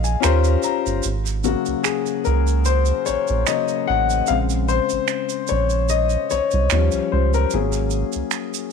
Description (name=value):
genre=R&B, neo-soul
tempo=74 BPM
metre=4/4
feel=swing 54% on 16ths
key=unclear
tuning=A4 = 440 Hz
part: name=warm grand piano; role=accompaniment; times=0.0-8.7 s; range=Db3 to Bb5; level=-20 LUFS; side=left 10 dB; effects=none
part: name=rubbery square bass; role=bass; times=0.0-8.2 s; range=G1 to Eb2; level=-20 LUFS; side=right 2 dB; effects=none
part: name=tube shaker and finger snaps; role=percussion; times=0.0-8.7 s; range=none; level=-26 LUFS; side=right 16 dB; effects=none
room=light reverb, studio ambience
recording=1960s-style stereo with parts hard left and right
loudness=-18 LUFS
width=side -6 dB against mid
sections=0.0-1.0 A section; 1.0-8.7 B section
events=grand piano fill 0.0-1.0; grand piano solo 1.0-8.7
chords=0.2 Eb7; 1.0 Ab9sus4; 4.3 Bbm9; 6.7 Eb7; 7.5 Ab9sus4